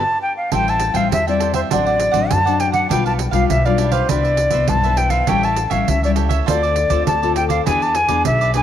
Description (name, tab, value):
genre	samba and choro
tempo	101 BPM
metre	4/4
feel	straight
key	A minor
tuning	A4 = 441 Hz
part	jazz flute	melody	0.0-8.6 s	C5 to A5	-18 LUFS	left 1 dB	none
part	cavaquinho	accompaniment	0.0-8.6 s	D4 to G5	-25 LUFS	right 10 dB	none
part	upright bass	bass	0.0-8.6 s	A1 to F#2	-21 LUFS	equal	none
part	nylon-string guitar	accompaniment	0.5-8.6 s	G2 to A4	-23 LUFS	left 10 dB	none
part	pandeiro	percussion	0.5-8.6 s	none	-25 LUFS	right 8 dB	none
room	light reverb, small room ambience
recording	1960s-style stereo with parts hard left and right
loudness	-15 LUFS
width	side -10 dB against mid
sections	0.5-8.6 A section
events	band accent 0.0-0.5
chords	0.0 Gsus2; 0.5 Am7; 1.7 D7/A; 2.9 G7/B; 4.1 Cmaj9; 5.3 A7; 6.5 Dm7; 7.7 E7